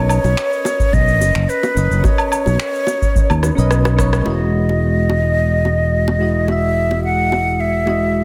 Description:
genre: sunset chillout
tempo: 108 BPM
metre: 4/4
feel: straight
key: unclear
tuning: A4 = 440 Hz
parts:
  - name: breathy mellow silver concert flute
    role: melody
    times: 0.0-8.2 s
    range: Cb5 to F#5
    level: -21 LUFS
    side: equal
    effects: tape echo
  - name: soft electric-piano-like synth keys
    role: accompaniment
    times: 0.0-8.2 s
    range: G#3 to E5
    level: -25 LUFS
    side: equal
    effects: chorus, tape echo
  - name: sustaining fretless electric bass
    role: bass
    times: 0.0-8.2 s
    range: E1 to Eb2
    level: -19 LUFS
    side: equal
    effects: tube saturation, ensemble chorus
  - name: electronic woodblock, cabasa, finger snaps and rim click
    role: drums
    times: 0.1-4.2 s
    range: none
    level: -26 LUFS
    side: equal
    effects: overdrive, soft clipping on snare
  - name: bongos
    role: percussion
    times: 0.2-8.0 s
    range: none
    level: -28 LUFS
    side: equal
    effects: none
  - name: electronic kick drum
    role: drums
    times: 0.8-4.1 s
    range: none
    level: -19 LUFS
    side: equal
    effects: none
room: moderate lush hall reverb, RT60 1.7 s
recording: dense, heavily limited modern master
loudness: -16 LUFS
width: mono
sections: 0.0-4.3 A section; 4.3-8.2 B section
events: drum fill 3.4-4.3; band accent 4.1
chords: 0.0 Cbmaj9; 4.3 Emaj9

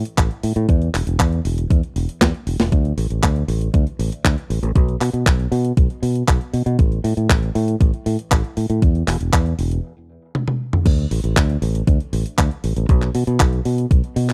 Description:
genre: italo disco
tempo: 118 BPM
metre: 4/4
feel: straight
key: unclear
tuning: A4 = 440 Hz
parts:
  - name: fingered electric bass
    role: bass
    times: 0.0-14.3 s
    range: E1 to B2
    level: -22 LUFS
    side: equal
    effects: tape echo
  - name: clean 12-bit digital drum machine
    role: drums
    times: 0.1-14.3 s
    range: crash cymbal, handclaps, hi-hat, snare drum, toms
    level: -23 LUFS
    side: equal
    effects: studio reverb
  - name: electronic kick drum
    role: drums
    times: 0.2-14.0 s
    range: none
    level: -18 LUFS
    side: equal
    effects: studio reverb
room: little or no reverb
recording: dry, close 1970s-style studio recording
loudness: -19 LUFS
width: mono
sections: 0.0-2.7 A section; 2.7-10.9 B section; 10.9-14.3 C section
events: drum fill 2.2-2.7, 10.3-10.9; stop 9.8-10.9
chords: none

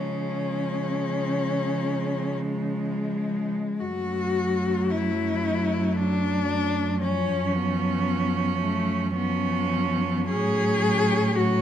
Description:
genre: classical, lyrical piece for cello ensemble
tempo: 42-59 BPM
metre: 3/4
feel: rubato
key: F# minor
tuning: A4 = 440 Hz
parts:
  - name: rich cello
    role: melody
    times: 0.0-11.6 s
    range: G#3 to G#4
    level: -27 LUFS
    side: left 5 dB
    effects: none
  - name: clear cello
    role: second line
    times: 0.0-11.6 s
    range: G#3 to C#4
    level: -31 LUFS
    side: right 7 dB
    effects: none
  - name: warm cello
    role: accompaniment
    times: 0.0-11.6 s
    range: E#3 to F#3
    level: -31 LUFS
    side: left 1 dB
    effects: none
  - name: dark cello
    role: bass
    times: 0.0-11.6 s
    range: F#2 to C#3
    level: -28 LUFS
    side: right 2 dB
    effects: none
room: moderate recital hall reverb, RT60 1.4 s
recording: close, detailed microphones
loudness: -23 LUFS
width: side -10 dB against mid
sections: 0.0-3.8 A section; 3.8-11.6 B section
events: none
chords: 0.0 C#; 3.8 F#m; 7.0 C#7/F#; 10.3 F#m/A

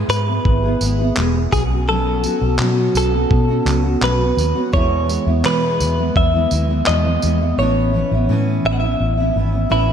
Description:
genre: acoustic pop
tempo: 84 BPM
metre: 4/4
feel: straight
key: E major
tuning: A4 = 439 Hz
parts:
  - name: fingerpicked steel-string acoustic guitar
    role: accompaniment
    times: 0.0-9.9 s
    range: E2 to G#4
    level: -20 LUFS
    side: equal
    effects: double-tracked left and right
  - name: vintage muted fingered electric bass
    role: bass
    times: 0.0-9.9 s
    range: E1 to E3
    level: -19 LUFS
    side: equal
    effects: none
  - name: direct-recorded clean electric guitar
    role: melody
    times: 0.1-9.9 s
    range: E4 to F#5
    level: -21 LUFS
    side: equal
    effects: wide subtle chorus
  - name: dusty soul sampler-style drum kit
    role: drums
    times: 0.1-7.4 s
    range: handclaps, kick drum, tambourine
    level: -22 LUFS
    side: equal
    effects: none
room: moderate plate reverb, RT60 3.1 s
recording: dreamy mix soaked in reverb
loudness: -15 LUFS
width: side -8 dB against mid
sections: 0.0-9.9 A section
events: none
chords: 0.0 E/G#; 1.5 Bsus2; 4.7 E; 7.6 Aadd9

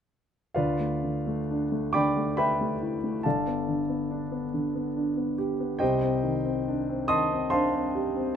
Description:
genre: classical, impressionist solo piano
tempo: 70 BPM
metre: 3/4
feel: rubato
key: D dorian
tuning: A4 = 440 Hz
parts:
  - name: warm grand piano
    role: solo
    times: 0.5-8.4 s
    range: G1 to Eb6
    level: -25 LUFS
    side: equal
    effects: none
room: moderate stone room reverb, RT60 1.1 s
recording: close, detailed microphones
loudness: -25 LUFS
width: side -8 dB against mid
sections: 0.6-8.4 A section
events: none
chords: 0.6 Dmadd9; 3.2 Gadd9; 5.8 Cmadd9

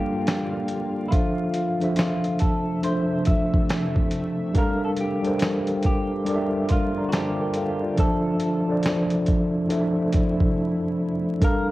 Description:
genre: lo-fi hip hop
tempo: 70 BPM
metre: 4/4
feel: swing 64% on 16ths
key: D minor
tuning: A4 = 440 Hz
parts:
  - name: electric guitar through a small old amp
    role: melody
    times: 0.0-11.7 s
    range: E4 to E5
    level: -31 LUFS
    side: left 1 dB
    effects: analog chorus, low-pass filter, cassette tape, tape echo
  - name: mellow tine electric piano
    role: accompaniment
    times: 0.0-11.7 s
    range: F3 to C6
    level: -23 LUFS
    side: equal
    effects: medium stereo tremolo, low-pass filter
  - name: granular cloud pad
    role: sustained chords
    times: 0.0-11.4 s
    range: F2 to E5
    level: -35 LUFS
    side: equal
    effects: built-in reverb, low-pass filter
  - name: dusty soul sampler-style drum kit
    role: drums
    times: 0.3-11.7 s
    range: hi-hat, kick drum, snare drum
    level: -24 LUFS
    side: equal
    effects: cassette tape
room: moderate studio reverb, RT60 0.6 s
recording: home recording on cassette, vinyl crackle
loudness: -21 LUFS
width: side -17 dB against mid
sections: 0.0-11.4 A section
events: break 10.6-11.4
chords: 0.0 Gm7; 1.1 Dm9/F; 4.6 Gm7; 8.0 Dm9/F

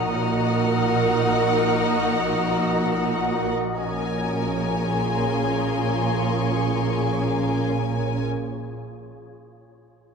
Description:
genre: cinematic, suspense film score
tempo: 54 BPM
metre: 4/4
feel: straight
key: Bb minor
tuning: A4 = 439 Hz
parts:
  - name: warm studio violin section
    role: melody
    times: 0.0-8.2 s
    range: Gb5 to Ab5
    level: -29 LUFS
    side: left 5 dB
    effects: none
  - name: warm studio violin section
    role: second line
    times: 0.0-8.2 s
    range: Db4 to Bb4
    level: -26 LUFS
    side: equal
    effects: none
  - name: wind-like tuned noise texture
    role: sustained chords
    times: 0.0-8.2 s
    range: F4 to Eb5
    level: -27 LUFS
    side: left 1 dB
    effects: built-in reverb
  - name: dark studio cello section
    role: bass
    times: 0.0-8.2 s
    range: Bb2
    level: -29 LUFS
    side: right 2 dB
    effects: none
  - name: warm studio double bass section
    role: bass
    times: 0.0-8.2 s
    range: Bb1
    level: -27 LUFS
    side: right 6 dB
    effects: none
  - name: warm studio violin section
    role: texture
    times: 0.0-7.6 s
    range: Bb5 to F6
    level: -36 LUFS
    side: left 6 dB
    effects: none
room: wet concert hall reverb, RT60 2.4 s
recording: minimal, uncompressed stereo recording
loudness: -20 LUFS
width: side -5 dB against mid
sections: 0.0-3.8 A section; 3.8-8.2 B section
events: none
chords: 0.0 Ebm/Bb; 3.8 Bbm7

